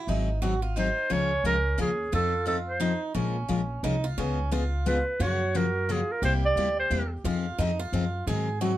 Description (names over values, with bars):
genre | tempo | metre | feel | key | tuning
acoustic string swing (jazz manouche) | 176 BPM | 3/4 | swing 60% on 8ths | Db major | A4 = 444 Hz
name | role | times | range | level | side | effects
picked swing-style acoustic guitar | second line | 0.0-8.8 s | Db4 to Ab4 | -34 LUFS | right 4 dB | none
picked steel-string acoustic guitar | accompaniment | 0.1-8.7 s | C3 to Bb4 | -30 LUFS | left 5 dB | none
upright bass | bass | 0.1-8.8 s | G#1 to Ab2 | -29 LUFS | equal | none
breathy clarinet | melody | 0.8-7.1 s | Ab4 to D5 | -27 LUFS | right 2 dB | none
room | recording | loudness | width
light reverb | none | -24 LUFS | side -14 dB against mid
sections
0.0-1.1 A section; 1.1-8.8 B section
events
none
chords
0.1 G#7; 1.1 Db6; 2.1 F7; 3.2 Bbm9; 4.2 Db7; 5.2 Gbmaj7; 6.2 C7; 7.2 Fm7; 8.3 Ab7